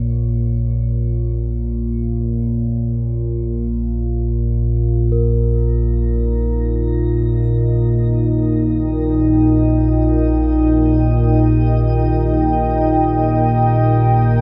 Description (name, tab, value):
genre	dark ambient drone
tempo	free time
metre	none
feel	none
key	unclear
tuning	A4 = 440 Hz
part	analog drone	drone	0.0-14.4 s	Bb1 to Bb2	-18 LUFS	equal	lush chorus
part	bronze singing bowl	texture	0.0-14.4 s	Bb4 to Db5	-34 LUFS	equal	shimmer reverb
part	deep dark ambient pad	sustained chords	6.6-14.4 s	Eb4 to G5	-20 LUFS	equal	chorus, built-in reverb, shimmer reverb
room	wet cathedral reverb, RT60 5.0 s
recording	none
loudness	-17 LUFS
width	mono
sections	0.0-14.4 A section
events	filter sweep on synth drone 0.0-14.4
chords	0.0 Bbm; 5.1 Eb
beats	free time